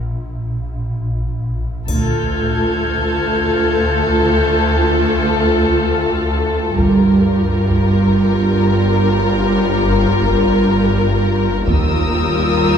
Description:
cinematic, suspense film score; free time; A4 = 440 Hz
swarming drone; drone; 0.0-12.8 s; G1 to Eb2; -22 LUFS; equal; built-in reverb
warm symphonic violin section; melody; 1.9-12.8 s; A4 to Bb4; -20 LUFS; left 4 dB
rich symphonic viola section; accompaniment; 1.9-12.8 s; G3 to F4; -19 LUFS; equal
rich symphonic double bass section; bass; 1.9-2.5, 6.8-7.4, 11.7-12.3 s; G1 to Eb2; -22 LUFS; right 2 dB
warm symphonic cello section; bass; 1.9-12.8 s; D2 to G2; -17 LUFS; right 2 dB
solo taiko drums; drums; 1.9-3.1, 6.8-8.0, 11.7-12.8 s; -23 LUFS; left 1 dB
triangle; percussion; 1.9-3.1 s; -32 LUFS; left 6 dB
warm symphonic violin section; texture; 1.9-6.4, 11.7-12.8 s; Eb6 to Ab6; -23 LUFS; left 3 dB
wet recital hall reverb, RT60 1.5 s; recorded in a church or concert hall; -13 LUFS; side -7 dB against mid
0.0-1.9 A section; 1.9-12.8 B section
break 0.0-1.9
0.0 N.C.; 1.9 Dm; 6.8 Gm7; 11.7 Ebadd9

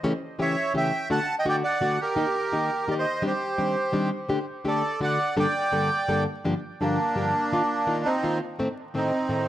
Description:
tango; 169 BPM; 3/4; rubato; G minor; A4 = 440 Hz
nylon-string guitar; accompaniment; 0.0-9.5 s; G2 to A4; -27 LUFS; left 1 dB
bandoneon; melody; 0.4-9.5 s; Bb3 to A5; -25 LUFS; right 2 dB; plate reverb, tape echo
moderate club reverb, RT60 0.7 s; vinyl crackle; -23 LUFS; side -13 dB against mid
0.0-6.4 A section; 6.4-9.5 B section
0.0 A7/C#; 1.1 D; 2.2 Eb; 3.2 Cmadd9/Eb; 4.3 Dsus4; 5.0 D; 5.4 Gmadd9; 6.4 Gm7; 7.5 Ebsus2; 8.6 Adim

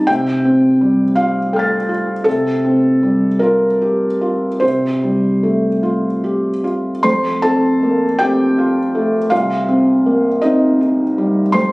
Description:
neoclassical minimalist piano; 48-56 BPM (dotted quarters); 6/8; rubato; A4 = 440 Hz
felt-muted upright piano; solo; 0.0-11.7 s; C2 to A6; -13 LUFS; equal
wet recital hall reverb, RT60 1.6 s; recorded on a phone in the room, studio reverb; -13 LUFS; side -22 dB against mid
0.0-7.0 A section; 7.0-11.7 B section
0.1 Fadd9/C; 2.3 Gm11/C; 4.6 Fadd9/C; 7.0 Fadd9; 9.3 Cm

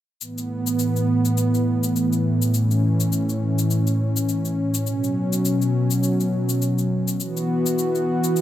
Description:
organic downtempo; 103 BPM; 4/4; swing 57% on 16ths; A4 = 439 Hz
warm analog pad; sustained chords; 0.2-8.4 s; A2 to F#4; -19 LUFS; equal; chorus
cabasa; drums; 0.2-8.4 s; -30 LUFS; left 7 dB
moderate huge ambient reverb, RT60 4.4 s; -19 LUFS; side -12 dB against mid
0.2-8.4 A section
0.2 Aadd9; 4.9 B5; 7.2 E5

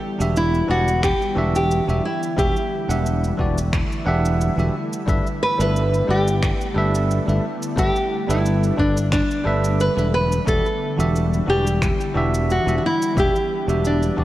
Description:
sunset chillout; 89 BPM; 4/4; swing 53% on 16ths; E minor; A4 = 440 Hz
nylon-string guitar; melody; 0.0-14.2 s; D4 to B4; -22 LUFS; equal; digital delay
ethereal airy pad; sustained chords; 0.0-14.2 s; D3 to E4; -28 LUFS; left 1 dB; ensemble chorus, built-in reverb
bell-like tine electric piano; accompaniment; 0.2-14.2 s; E3 to F#5; -25 LUFS; moving between left 3 dB and right 3 dB; auto-pan, digital delay
fingered electric bass; bass; 0.2-14.2 s; E1 to G1; -21 LUFS; equal
electronic shaker and finger snaps; drums; 0.2-14.1 s; -32 LUFS; equal
electronic kick drum; drums; 1.0-14.2 s; -24 LUFS; equal
moderate lush hall reverb, RT60 2.5 s; worn, warbling old tape, cassette tape, warbly pitch drift; -18 LUFS; side -14 dB against mid
0.0-14.2 A section
0.0 Em7; 5.1 G69; 10.5 Em7

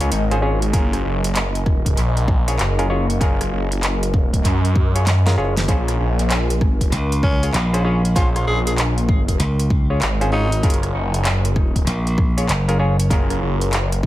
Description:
glitch hop; 97 BPM; 4/4; swing 64% on 16ths; A4 = 444 Hz
mellow clav; stabs; 0.0-14.1 s; Db4 to Db5; -26 LUFS; equal; sidechain pumping, tape echo
phased detuned saw bass; bass; 0.0-14.1 s; Gb1 to Gb2; -19 LUFS; equal; phaser, overdrive
pop drum kit; drums; 0.0-14.0 s; handclaps, hi-hat, rim click, snare drum; -26 LUFS; equal; studio reverb, tape echo
warbly tape-like pad; texture; 0.0-14.1 s; Bb4 to Ab5; -32 LUFS; equal; chorus, built-in reverb, sidechain pumping
electronic kick drum; drums; 0.7-14.1 s; -19 LUFS; equal; studio reverb
glassy slap bass; bass; 6.9-13.1 s; Gb1 to Db2; -18 LUFS; equal
raspy tenor saxophone; melody; 7.2-10.7 s; Db4 to Ab4; -27 LUFS; equal; tape echo
little or no reverb; echo-heavy mix, vinyl crackle; -16 LUFS; side -15 dB against mid
0.0-14.1 A section
kick drops out 5.1-5.7; drum fill 5.1-5.7
0.0 Bbm9; 0.7 Gbmaj7; 5.7 Bbm9; 10.6 Gbmaj7

